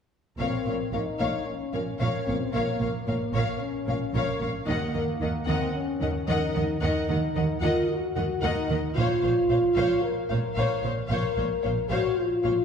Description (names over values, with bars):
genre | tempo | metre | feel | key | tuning
cinematic | 112 BPM | 4/4 | straight | Bb minor | A4 = 440 Hz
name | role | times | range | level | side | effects
warm symphonic violin section | melody | 0.4-12.5 s | F5 to Gb5 | -35 LUFS | left 5 dB | none
warm studio violin section | second line | 0.4-12.5 s | Db5 to Eb5 | -35 LUFS | left 3 dB | none
warm symphonic viola section | accompaniment | 0.4-12.5 s | Bb4 to C5 | -35 LUFS | right 1 dB | none
dark French horn section | sustained chords | 0.4-12.6 s | Bb3 to Bb4 | -28 LUFS | left 2 dB | none
clear symphonic double bass section | bass | 0.4-12.5 s | Bb1 to Eb2 | -31 LUFS | right 2 dB | none
warm symphonic cello section | bass | 0.4-12.5 s | Bb2 to Eb3 | -32 LUFS | right 3 dB | none
room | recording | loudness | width
wet scoring stage reverb, RT60 1.7 s | heard from further back in the room | -24 LUFS | side -7 dB against mid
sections
0.4-12.6 A section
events
none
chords
0.4 Bbmadd9; 4.7 Ebm; 9.0 Bbmadd9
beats
| 0.39 0.93 1.46 2.00 | 2.54 3.07 3.61 4.14 | 4.68 5.21 5.75 6.28 | 6.82 7.36 7.89 8.43 | 8.96 9.50 10.03 10.57 | 11.10 11.64 12.18